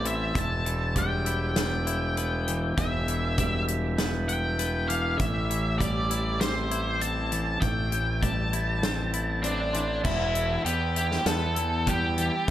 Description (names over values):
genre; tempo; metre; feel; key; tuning
post-rock; 99 BPM; 4/4; straight; unclear; A4 = 441 Hz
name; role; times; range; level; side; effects
octave-fuzz lead guitar; melody; 0.0-12.5 s; D4 to A5; -30 LUFS; equal; distortion, tape echo
glockenspiel with rubber mallets; arpeggios; 0.0-12.5 s; C6 to B6; -39 LUFS; right 4 dB; tape echo
twelve-string electric guitar; arpeggios; 0.0-12.5 s; A2 to E4; -33 LUFS; left 3 dB; warbly pitch drift, tape echo
fuzz fingered electric bass; bass; 0.0-12.5 s; E1 to E2; -29 LUFS; equal; overdrive
big rock drum kit; drums; 0.1-12.5 s; crash cymbal, hi-hat, kick drum, snare drum; -30 LUFS; equal; none
room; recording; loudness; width
light reverb, small room reverb; none; -24 LUFS; side -12 dB against mid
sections
0.0-10.0 A section; 10.0-12.5 B section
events
none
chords
0.3 Em; 5.2 Am7; 10.0 Em